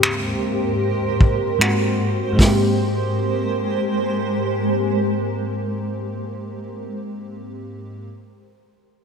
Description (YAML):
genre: contemporary R&B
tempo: 76 BPM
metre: 4/4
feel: straight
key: Ab major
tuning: A4 = 440 Hz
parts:
  - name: FM electric piano with soft pad layer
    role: accompaniment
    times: 0.0-8.1 s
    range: Ab2 to G4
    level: -23 LUFS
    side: equal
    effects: chorus
  - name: granular cloud pad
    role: sustained chords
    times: 0.0-6.3 s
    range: Ab2 to C5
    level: -23 LUFS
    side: right 1 dB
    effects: built-in reverb, sidechain pumping
  - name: vintage brush drum kit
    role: drums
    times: 0.0-2.6 s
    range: finger snaps, hi-hat, kick drum, snare drum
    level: -18 LUFS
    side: equal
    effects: none
room: moderate lush hall reverb, RT60 2.1 s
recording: none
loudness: -18 LUFS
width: side -6 dB against mid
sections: 0.0-2.4 A section; 2.4-5.5 B section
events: none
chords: 0.0 Abmaj9; 1.6 Ab7; 2.4 Abmaj9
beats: 0.02 0.81 1.60 | 2.39 3.18 3.97 4.76